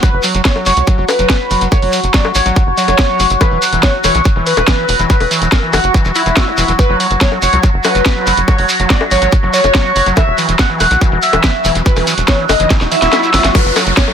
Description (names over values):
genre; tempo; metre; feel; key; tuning
psychedelic trance; 142 BPM; 4/4; straight; unclear; A4 = 440 Hz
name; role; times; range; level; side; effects
overdriven synth lead; melody; 0.0-14.1 s; E4 to F#5; -16 LUFS; equal; phaser, sidechain pumping, ping-pong delay
overtone-sweeping drone; sustained chords; 0.0-14.1 s; F#3 to F#4; -18 LUFS; left 1 dB; chorus, built-in reverb, phaser, sidechain pumping
overdriven acid bass; riff; 0.0-14.1 s; D#3 to F#4; -21 LUFS; right 1 dB; distortion, auto-pan, sidechain pumping, digital delay
drum and bass drum kit; drums; 0.0-14.1 s; bongos, crash cymbal, hi-hat, snare drum; -17 LUFS; left 1 dB; none
electronic kick drum; drums; 0.0-14.1 s; none; -12 LUFS; equal; none
shekere; percussion; 0.0-14.1 s; none; -22 LUFS; right 1 dB; none
tight sequencer bass; bass; 0.1-13.9 s; E1 to C#2; -17 LUFS; equal; none
riser and downlifter; sound effects; 11.6-14.1 s; none; -22 LUFS; left 1 dB; none
room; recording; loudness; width
light reverb, digital ambience; none; -9 LUFS; side -8 dB against mid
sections
0.0-13.6 A section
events
riser 11.6-13.6; drum fill 12.7-13.6; kick drops out 13.1-13.6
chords
0.0 F#5; 3.4 E5; 6.8 F#5; 10.2 E5; 13.6 F#5